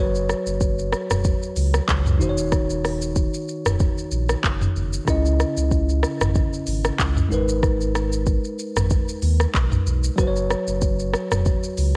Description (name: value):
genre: afrobeats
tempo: 94 BPM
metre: 4/4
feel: swing 55% on 16ths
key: unclear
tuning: A4 = 443 Hz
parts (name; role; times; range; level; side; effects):
- bell-like tine electric piano; accompaniment; 0.0-12.0 s; C#3 to D#5; -28 LUFS; equal; none
- sub bass with octave; bass; 0.0-12.0 s; D#1 to D#2; -25 LUFS; equal; none
- afro-pop drum kit; drums; 0.1-11.9 s; handclaps, hi-hat, kick drum, rim click, shaker, toms; -25 LUFS; equal; cassette tape
room: digital ambience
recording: home recording on cassette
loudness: -22 LUFS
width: mono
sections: 0.0-12.0 A section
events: none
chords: 0.0 F#sus4; 2.2 D#m7; 5.1 C#madd9; 7.3 G#madd9; 10.2 F#sus4